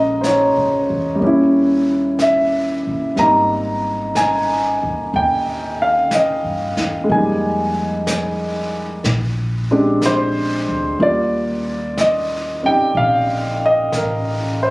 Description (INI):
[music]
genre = jazz ballad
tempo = 61 BPM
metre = 4/4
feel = swing 68% on 8ths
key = Eb major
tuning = A4 = 440 Hz
[part]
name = warm baby grand piano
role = accompaniment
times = 0.0-14.7 s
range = G3 to Bb5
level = -16 LUFS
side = equal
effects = none
[part]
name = upright bass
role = bass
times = 0.0-14.7 s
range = Ab1 to G2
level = -26 LUFS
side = equal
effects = none
[part]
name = vintage brush drum kit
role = drums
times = 0.2-14.7 s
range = brushed snare drum, hi-hat, snare drum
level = -28 LUFS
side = equal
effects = none
[sound]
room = light reverb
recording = recorded on a phone in the room, club reverb, compression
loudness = -15 LUFS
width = side -23 dB against mid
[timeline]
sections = 0.0-14.7 A section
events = none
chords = 0.0 Bbm7; 1.2 Eb7b9; 3.2 Abmaj9; 7.1 Fm11; 9.0 Bb13; 11.0 Ebmaj9